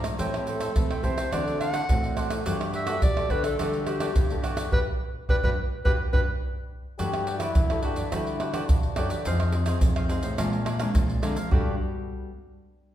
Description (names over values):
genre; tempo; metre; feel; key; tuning
samba and choro; 106 BPM; 4/4; straight; G major; A4 = 439 Hz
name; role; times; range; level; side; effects
cavaquinho; accompaniment; 0.0-11.7 s; D4 to Bb5; -35 LUFS; right 3 dB; none
nylon-string guitar; accompaniment; 0.0-12.3 s; F2 to B4; -34 LUFS; left 2 dB; none
nylon-string guitar; bass; 0.0-11.8 s; F2 to A3; -31 LUFS; left 1 dB; none
tube shaker, pandeiro, tamborim and surdo; percussion; 0.0-11.6 s; none; -26 LUFS; right 1 dB; none
clear clarinet; melody; 0.5-6.2 s; G4 to F#5; -30 LUFS; equal; none
warm trombone; second line; 7.0-11.8 s; D4 to G4; -33 LUFS; left 2 dB; none
room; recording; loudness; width
wet recital hall reverb, RT60 1.4 s; recorded in a church or concert hall; -23 LUFS; side -12 dB against mid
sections
0.0-7.0 A section; 7.0-11.5 B section; 11.5-12.9 C section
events
band accent 4.7-7.0; drum fill 6.6-7.0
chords
0.2 Am9; 1.3 D7; 2.5 Gmaj9; 9.3 Fm7; 10.4 Bb9; 11.5 Gmaj9